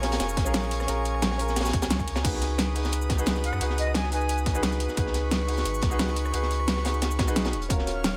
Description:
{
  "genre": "liquid drum and bass",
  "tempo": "176 BPM",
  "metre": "4/4",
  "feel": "straight",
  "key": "unclear",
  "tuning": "A4 = 438 Hz",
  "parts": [
    { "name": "warm grand piano", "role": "accompaniment", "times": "0.0-8.2 s", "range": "Db4 to Cb5", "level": "-34 LUFS", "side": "equal", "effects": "tape echo" },
    { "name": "airy breathy pad", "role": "sustained chords", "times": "0.0-8.2 s", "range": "Bb4 to F6", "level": "-36 LUFS", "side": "equal", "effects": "chorus, sidechain pumping" },
    { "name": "warm sub bass", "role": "bass", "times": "0.0-8.2 s", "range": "Eb1 to Gb2", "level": "-31 LUFS", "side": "equal", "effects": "none" },
    { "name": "crunchy breakbeat drum kit", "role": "drums", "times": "0.0-8.1 s", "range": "hi-hat, snare drum", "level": "-35 LUFS", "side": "equal", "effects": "high-pass filter on hats, high-pass filter on snare, high-pass filter on room" },
    { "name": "pop drum kit", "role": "drums", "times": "0.0-8.1 s", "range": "crash cymbal, hi-hat, rim click, shaker, snare drum", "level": "-32 LUFS", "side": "equal", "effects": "overdrive" },
    { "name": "electronic kick drum", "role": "drums", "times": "0.4-7.8 s", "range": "none", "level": "-30 LUFS", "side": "equal", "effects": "overdrive" },
    { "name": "silver concert flute", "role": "melody", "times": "3.4-4.4 s", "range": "Eb5 to Ab5", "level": "-35 LUFS", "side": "equal", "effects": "tape echo" }
  ],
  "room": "light reverb",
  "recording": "none",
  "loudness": "-26 LUFS",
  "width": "mono",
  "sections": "0.0-8.2 A section",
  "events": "none",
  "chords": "0.0 Bbm7; 2.2 Db9sus4; 7.5 Ebm9",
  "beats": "0.20 0.54 | 0.88 1.22 1.56 1.91 | 2.25 2.59 2.93 3.27 | 3.61 3.95 4.29 4.63 | 4.97 5.31 5.66 6.00 | 6.34 6.68 7.02 7.36 | 7.70 8.04"
}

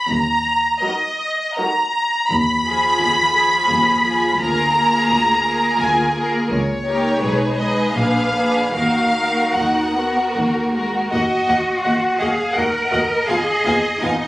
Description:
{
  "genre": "classical, slow romantic movement for string orchestra",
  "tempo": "74-87 BPM",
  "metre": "3/4",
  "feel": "rubato",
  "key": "Eb minor",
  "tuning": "A4 = 443 Hz",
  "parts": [
    { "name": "rich studio violin section", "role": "melody", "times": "0.0-14.3 s", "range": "Db5 to Cb6", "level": "-18 LUFS", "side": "equal", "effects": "none" },
    { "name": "rich symphonic cello section", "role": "bass", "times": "0.1-14.3 s", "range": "Db2 to Bb4", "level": "-22 LUFS", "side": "equal", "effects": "none" },
    { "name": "rich symphonic double bass section", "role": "bass", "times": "0.1-14.1 s", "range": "Bb1 to Eb2", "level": "-25 LUFS", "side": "equal", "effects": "none" },
    { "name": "rich symphonic violin section", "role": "second line", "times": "0.8-14.1 s", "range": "Gb4 to Ab5", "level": "-23 LUFS", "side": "equal", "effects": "none" },
    { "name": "warm symphonic viola section", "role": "accompaniment", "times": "0.8-14.1 s", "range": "F3 to Gb4", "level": "-24 LUFS", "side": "equal", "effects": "none" }
  ],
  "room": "moderate studio reverb, RT60 0.8 s",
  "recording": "recorded on a phone in the room, club reverb",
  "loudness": "-15 LUFS",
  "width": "side -17 dB against mid",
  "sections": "0.0-11.1 A section; 11.1-14.3 A section",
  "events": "none",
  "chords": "0.1 Ebm; 2.3 Fm7b5/Eb; 4.4 Bb7/D; 6.5 Eb7/Db; 7.2 Abm/Cb; 8.0 Bb7b9; 8.7 Ebm; 13.3 Fm7b5",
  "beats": "| 0.10 0.84 1.60 | 2.31 3.01 3.70 | 4.39 5.09 5.80 | 6.51 7.23 7.97 | 8.74 9.54 10.35 | 11.12 11.84 12.56 | 13.29 14.02"
}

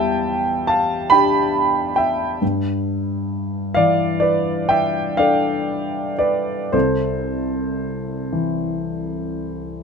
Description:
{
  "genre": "classical, impressionist solo piano",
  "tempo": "37-48 BPM (dotted quarters)",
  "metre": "9/8",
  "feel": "rubato",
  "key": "C major",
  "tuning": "A4 = 441 Hz",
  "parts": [
    { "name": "warm grand piano", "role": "solo", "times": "0.0-9.8 s", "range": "C2 to B5", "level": "-18 LUFS", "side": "equal", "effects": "none" }
  ],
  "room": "light reverb",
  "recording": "close, detailed microphones",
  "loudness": "-18 LUFS",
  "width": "side -5 dB against mid",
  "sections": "0.0-9.8 A section",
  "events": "none",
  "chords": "0.0 Em7; 2.4 G13; 6.7 C6",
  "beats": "1.12 | 2.42 3.76 5.21 | 6.74 8.32"
}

